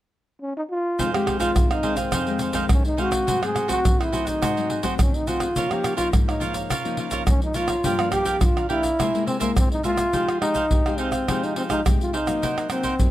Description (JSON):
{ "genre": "samba and choro", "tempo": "105 BPM", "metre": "4/4", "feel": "straight", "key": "F minor", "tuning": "A4 = 439 Hz", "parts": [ { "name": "breathy trombone", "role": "melody", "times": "0.4-13.1 s", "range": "Bb3 to Ab4", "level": "-24 LUFS", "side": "equal", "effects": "none" }, { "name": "cavaquinho", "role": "accompaniment", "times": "1.0-12.9 s", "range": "Eb4 to G#5", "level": "-28 LUFS", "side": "right 6 dB", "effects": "none" }, { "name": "nylon-string guitar", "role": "accompaniment", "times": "1.0-13.1 s", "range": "F2 to G4", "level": "-29 LUFS", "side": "left 6 dB", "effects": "none" }, { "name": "tube shaker, surdo, pandeiro and tamborim", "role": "percussion", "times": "1.0-13.1 s", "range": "none", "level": "-23 LUFS", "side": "equal", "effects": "none" } ], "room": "light reverb", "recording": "close, detailed microphones", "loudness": "-20 LUFS", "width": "side -14 dB against mid", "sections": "1.0-10.1 A section; 10.1-13.1 B section", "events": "none", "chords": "0.0 N.C.; 1.0 Fm7; 3.3 Ab7b9; 5.6 Db69; 7.8 Gm7; 9.0 Caug7; 10.1 Fm9; 12.4 Cm7b5" }